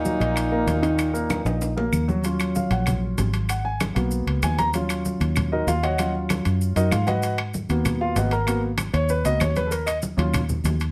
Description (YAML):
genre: Afro-Cuban jazz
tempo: 192 BPM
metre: 4/4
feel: straight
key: Eb minor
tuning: A4 = 442 Hz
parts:
  - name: breathy alto saxophone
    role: melody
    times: 0.0-1.9 s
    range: Eb4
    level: -30 LUFS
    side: equal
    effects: none
  - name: bright trombone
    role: second line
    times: 0.0-1.9 s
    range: Bb2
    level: -33 LUFS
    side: equal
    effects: none
  - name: warm grand piano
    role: accompaniment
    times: 0.0-10.4 s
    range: Eb3 to Bb5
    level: -27 LUFS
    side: equal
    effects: none
  - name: fingered electric bass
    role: bass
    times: 0.0-10.9 s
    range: Ab1 to Ab2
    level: -27 LUFS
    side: equal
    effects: none
  - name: congas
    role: percussion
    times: 0.1-10.9 s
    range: none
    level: -33 LUFS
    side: equal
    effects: none
  - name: maracas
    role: percussion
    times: 0.1-10.9 s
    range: none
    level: -41 LUFS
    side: equal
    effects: none
  - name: timbales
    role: percussion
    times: 0.1-10.9 s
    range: none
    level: -35 LUFS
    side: equal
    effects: none
  - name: claves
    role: percussion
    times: 0.4-10.5 s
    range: none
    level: -36 LUFS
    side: equal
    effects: none
room: moderate studio reverb, RT60 0.7 s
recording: none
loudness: -23 LUFS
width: mono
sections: 0.0-2.2 A section; 2.2-10.9 B section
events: drum fill 1.3-2.2; grand piano solo 2.2-10.9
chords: 0.0 Ebm; 2.2 Ebm7; 3.5 Abm7; 4.7 Ebm7; 7.2 Abm7; 9.7 Ebm7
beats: 0.05 0.36 0.68 | 0.99 1.30 1.62 1.93 | 2.24 2.55 2.87 3.18 | 3.49 3.80 4.11 4.42 | 4.74 5.05 5.36 5.67 | 5.98 6.29 6.61 6.92 | 7.23 7.54 7.85 8.16 | 8.47 8.79 9.10 9.41 | 9.72 10.03 10.34 10.65